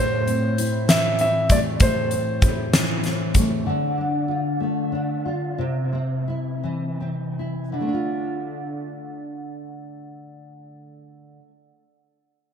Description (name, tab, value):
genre	six-eight pop ballad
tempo	49-65 BPM (dotted quarters)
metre	6/8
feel	straight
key	D minor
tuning	A4 = 440 Hz
part	clear concert grand piano	melody	0.0-3.0 s	C5 to E5	-24 LUFS	right 1 dB	dub echo
part	nylon-string guitar	accompaniment	0.0-11.6 s	A2 to F4	-24 LUFS	left 1 dB	double-tracked left and right, dub echo
part	huge arena drum kit	drums	0.3-3.5 s	hi-hat, kick drum, snare drum	-21 LUFS	equal	none
room	light reverb, studio reverb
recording	echo-heavy mix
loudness	-20 LUFS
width	side -8 dB against mid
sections	0.0-3.7 A section; 3.7-7.8 B section; 7.8-12.5 C section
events	slowing down 3.7-7.8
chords	0.0 Am; 3.7 Dm; 5.6 C; 7.8 Dm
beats	0.89 | 1.81 2.73 | 3.66 4.60 | 5.58 6.63 | 7.79 9.02 | 10.24 11.47